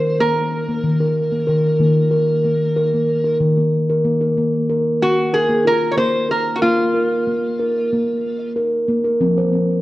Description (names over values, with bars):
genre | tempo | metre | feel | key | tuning
world meditative, meditative tuned percussion | 93 BPM | 4/4 | straight | unclear | A4 = 440 Hz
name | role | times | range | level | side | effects
lap resonator guitar | melody | 0.0-8.5 s | F4 to Db5 | -19 LUFS | equal | none
steel tongue drum | arpeggios | 0.0-9.8 s | Eb3 to C5 | -16 LUFS | equal | tape echo
room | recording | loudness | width
wet recital hall reverb, RT60 1.5 s, small room reverb | worn, warbling old tape, cassette tape, warbly pitch drift | -15 LUFS | side -16 dB against mid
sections
0.0-4.0 A section; 4.0-9.8 B section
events
none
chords
0.0 Eb5; 4.0 Bb5; 9.2 F5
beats
0.19 0.83 | 1.47 2.12 2.76 3.40 | 4.05 4.69 5.34 5.98 | 6.63 7.27 7.92 8.56 | 9.21